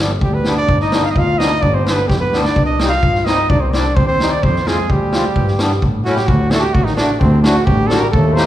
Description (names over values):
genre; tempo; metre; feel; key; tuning
klezmer; 129 BPM; 2/4; straight; G phrygian dominant; A4 = 440 Hz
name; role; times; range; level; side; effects
accordion; accompaniment; 0.0-8.5 s; G3 to G4; -22 LUFS; left 1 dB; none
rich double bass; bass; 0.0-8.3 s; G1 to A2; -18 LUFS; equal; none
warm cornet; melody; 0.2-8.5 s; C4 to F5; -19 LUFS; right 3 dB; none
clear trombone; second line; 0.2-8.5 s; C3 to G4; -22 LUFS; left 3 dB; none
street-band drum kit; drums; 0.2-8.5 s; kick drum, snare drum; -18 LUFS; equal; none
room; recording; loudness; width
moderate recital hall reverb, RT60 1.7 s; recorded in a church or concert hall; -12 LUFS; side -13 dB against mid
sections
0.0-6.3 A section; 6.3-8.5 B section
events
drum fill 2.1-2.6, 6.1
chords
0.0 G; 2.6 Cm; 4.4 Fm; 5.4 G; 5.8 A; 6.3 D